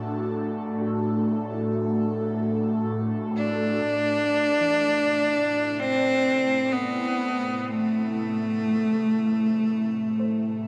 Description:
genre	ambient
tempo	free time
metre	none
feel	none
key	A dorian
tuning	A4 = 441 Hz
part	airy breathy pad	sustained chords	0.0-10.7 s	A2 to A4	-30 LUFS	equal	chorus, phaser
part	soft round pluck	arpeggios	0.0-10.7 s	E3 to E5	-47 LUFS	equal	none
part	bright cello	melody	3.4-10.7 s	A3 to D4	-24 LUFS	equal	tape echo
room	wet cathedral reverb, RT60 5.8 s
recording	none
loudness	-25 LUFS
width	mono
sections	0.0-3.9 A section; 3.9-10.7 B section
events	none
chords	0.0 Bm/A (rootless); 3.9 Am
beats	free time

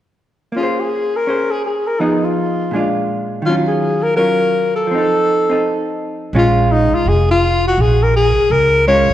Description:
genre	jazz, small-group swing and bop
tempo	166 BPM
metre	4/4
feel	swing 64% on 8ths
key	Bb minor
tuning	A4 = 439 Hz
part	vintage hollow-body jazz guitar	accompaniment	0.5-9.1 s	Bb2 to C5	-18 LUFS	right 1 dB	none
part	breathy alto saxophone	melody	0.6-9.1 s	Eb4 to Db5	-15 LUFS	left 1 dB	none
part	upright bass	bass	6.3-9.1 s	F1 to Db2	-15 LUFS	right 1 dB	none
room	moderate scoring stage reverb, RT60 1.9 s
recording	recorded in a church or concert hall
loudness	-13 LUFS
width	side -12 dB against mid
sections	0.5-6.3 A section; 6.3-9.1 B section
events	none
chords	0.5 Bbm9; 2.0 Fm7b5; 2.7 Bb7; 3.4 Ebm9; 4.9 F7; 6.3 Bbm7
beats	| 0.55 0.91 1.27 1.63 | 1.99 2.35 2.72 3.08 | 3.44 3.80 4.17 4.53 | 4.89 5.25 5.61 5.97 | 6.34 6.70 7.06 7.42 | 7.78 8.15 8.51 8.87

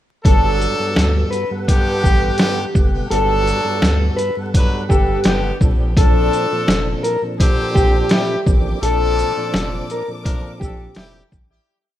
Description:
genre	hip hop, boom-bap hip-hop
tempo	84 BPM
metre	4/4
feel	swing 54% on 16ths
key	unclear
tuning	A4 = 440 Hz
part	mellow tonewheel organ	accompaniment	0.2-11.2 s	G2 to F#5	-25 LUFS	right 1 dB	chorus vibrato, slow rotary speaker, cassette tape
part	clear horn section	stabs	0.2-11.2 s	D3 to B4	-23 LUFS	left 2 dB	digital delay
part	saturated sub bass	bass	0.2-11.6 s	F1 to D2	-20 LUFS	equal	none
part	trip hop sampler-style drum kit	drums	0.2-11.5 s	hi-hat, kick drum, shaker, snare drum	-16 LUFS	equal	none
part	mellow electric guitar	melody	0.3-11.1 s	G4 to B4	-22 LUFS	equal	harmonic tremolo, digital delay
part	clear studio string section	sustained chords	8.5-11.7 s	D6	-38 LUFS	left 3 dB	none
room	light reverb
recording	rough home demo mix, vinyl crackle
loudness	-14 LUFS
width	side -12 dB against mid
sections	0.2-11.7 hook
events	fade-out 8.8-11.7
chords	0.2 Gmaj9; 5.6 Bbmaj9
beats	| 0.25 0.96 1.68 2.39 | 3.11 3.82 4.54 5.25 | 5.96 6.68 7.39 8.11 | 8.82 9.54 10.25 10.96

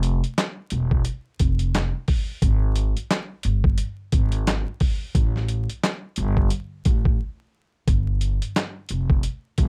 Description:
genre	hip hop, boom-bap hip-hop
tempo	88 BPM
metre	4/4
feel	swing 59% on 16ths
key	unclear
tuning	A4 = 440 Hz
part	upright bass	bass	0.0-9.7 s	E1 to A1	-25 LUFS	equal	none
part	boom bap sampler-style drum kit	drums	0.0-9.7 s	handclaps, hi-hat, kick drum, snare drum	-24 LUFS	equal	none
room	little or no reverb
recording	vinyl crackle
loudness	-23 LUFS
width	mono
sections	0.0-9.7 A section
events	break 7.2-7.9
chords	none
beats	0.38 1.06 1.74 | 2.42 3.10 3.79 4.47 | 5.15 5.83 6.51 7.19 | 7.88 8.56 9.24

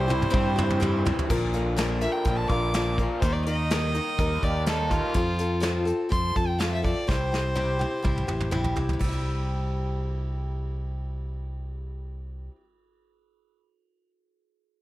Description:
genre	folk rock and heartland rock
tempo	124 BPM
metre	4/4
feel	straight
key	C mixolydian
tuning	A4 = 439 Hz
part	clear fiddle	melody	0.0-8.5 s	F4 to D6	-30 LUFS	equal	slapback echo
part	picked steel-string acoustic guitar	accompaniment	0.0-12.6 s	Bb2 to Bb4	-30 LUFS	left 2 dB	none
part	mellow tonewheel organ	sustained chords	0.0-1.3 s	C4 to C5	-34 LUFS	right 2 dB	fast rotary speaker
part	raw garage guitar	riff	0.0-5.2 s	Bb2 to G4	-32 LUFS	right 1 dB	overdrive
part	fingered electric bass	bass	0.0-12.5 s	A1 to G2	-28 LUFS	equal	none
part	soft brush drum kit	drums	0.1-9.1 s	crash cymbal, hi-hat, kick drum, ride cymbal, snare drum, toms	-29 LUFS	equal	none
room	light reverb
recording	none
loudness	-24 LUFS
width	side -16 dB against mid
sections	0.0-1.3 A section; 1.3-9.0 B section; 9.0-12.9 C section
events	drum fill 0.0-1.3, 7.1-9.0; fiddle solo 1.3-9.0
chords	0.0 C; 1.3 Bb; 3.2 Eb; 5.1 F; 7.1 C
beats	0.34 0.82 | 1.30 1.78 2.26 2.74 | 3.22 3.70 4.18 4.66 | 5.14 5.63 6.11 6.59 | 7.07 7.56 8.04 8.52 | 9.00 9.49 9.97 10.45 | 10.94 11.42 11.90 12.38

